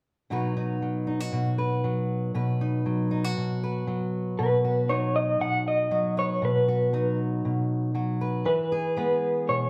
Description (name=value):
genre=folk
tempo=118 BPM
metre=4/4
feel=straight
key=B major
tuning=A4 = 435 Hz
part: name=fingerpicked steel-string acoustic guitar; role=accompaniment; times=0.3-9.7 s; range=B2 to B4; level=-28 LUFS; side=equal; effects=none
part: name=electric guitar through a small old amp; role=melody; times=4.4-9.7 s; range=B4 to F#5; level=-27 LUFS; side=equal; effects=tremolo
room=wet large studio reverb, RT60 0.9 s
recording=band playing live in one room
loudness=-26 LUFS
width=mono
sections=0.3-4.4 A section; 4.4-9.7 B section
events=none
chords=0.3 B; 8.5 E